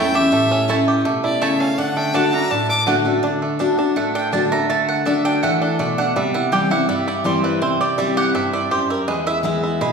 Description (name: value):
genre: bluegrass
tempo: 164 BPM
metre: 4/4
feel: straight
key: D major, D mixolydian from 3.2 s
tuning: A4 = 440 Hz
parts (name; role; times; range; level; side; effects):
- clear fiddle; melody; 0.0-2.8 s; D5 to D6; -22 LUFS; equal; none
- picked steel-string acoustic guitar; accompaniment; 0.0-9.9 s; E2 to F#4; -20 LUFS; left 2 dB; none
- bluegrass banjo; arpeggios; 0.0-9.9 s; G3 to G4; -21 LUFS; right 2 dB; none
- mandolin; stabs; 0.0-9.9 s; A3 to B5; -23 LUFS; right 4 dB; none
room: wet recital hall reverb, RT60 1.3 s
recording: recorded in a church or concert hall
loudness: -16 LUFS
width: side -5 dB against mid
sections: 0.0-3.2 A section; 3.2-9.9 B section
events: mandolin solo 3.2-9.9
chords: 0.0 A; 1.8 D; 6.2 C; 9.1 E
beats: | 0.33 0.69 1.05 1.42 | 1.78 2.15 2.51 2.88 | 3.24 3.60 3.97 4.33 | 4.70 5.06 5.43 5.79 | 6.16 6.52 6.89 7.25 | 7.62 7.99 8.35 8.72 | 9.08 9.45 9.81